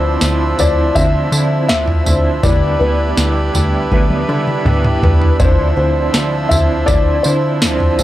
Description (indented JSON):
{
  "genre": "dream pop",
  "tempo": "81 BPM",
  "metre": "4/4",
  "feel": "straight",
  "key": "D dorian",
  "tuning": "A4 = 440 Hz",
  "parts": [
    { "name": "felt-muted upright piano", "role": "melody", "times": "0.0-8.0 s", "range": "B4 to E5", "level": "-19 LUFS", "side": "left 2 dB", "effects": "analog delay" },
    { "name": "electric guitar through a small old amp", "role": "accompaniment", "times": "0.0-8.0 s", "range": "D3 to E4", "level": "-23 LUFS", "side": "right 4 dB", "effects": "tremolo, analog chorus" },
    { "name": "hand-pumped harmonium", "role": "sustained chords", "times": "0.0-8.0 s", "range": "F3 to E5", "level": "-21 LUFS", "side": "right 2 dB", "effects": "none" },
    { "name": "fingerpicked twelve-string acoustic guitar", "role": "arpeggios", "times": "0.0-8.0 s", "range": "D3 to E4", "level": "-23 LUFS", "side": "left 2 dB", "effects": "ensemble chorus, analog delay" },
    { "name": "plucky analog bass", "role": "bass", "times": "0.0-8.0 s", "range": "D2 to D3", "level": "-17 LUFS", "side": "equal", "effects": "none" },
    { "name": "vibraphone with medium mallets", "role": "texture", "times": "0.0-5.0 s", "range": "E5 to E6", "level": "-31 LUFS", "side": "equal", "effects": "analog delay" },
    { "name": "booming analog drum machine", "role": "drums", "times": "0.2-8.0 s", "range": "kick drum, snare drum, tambourine, toms", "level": "-16 LUFS", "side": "equal", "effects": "overdrive" }
  ],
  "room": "studio ambience",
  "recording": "dry, gritty hardware recording",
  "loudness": "-12 LUFS",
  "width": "side -14 dB against mid",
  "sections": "0.0-8.0 A section",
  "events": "drum fill 3.9-5.4",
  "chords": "0.0 Dm9; 2.4 Em7/D; 5.4 Dm9",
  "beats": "0.22 0.96 1.70 | 2.44 3.18 3.92 4.66 | 5.40 6.14 6.88 7.62"
}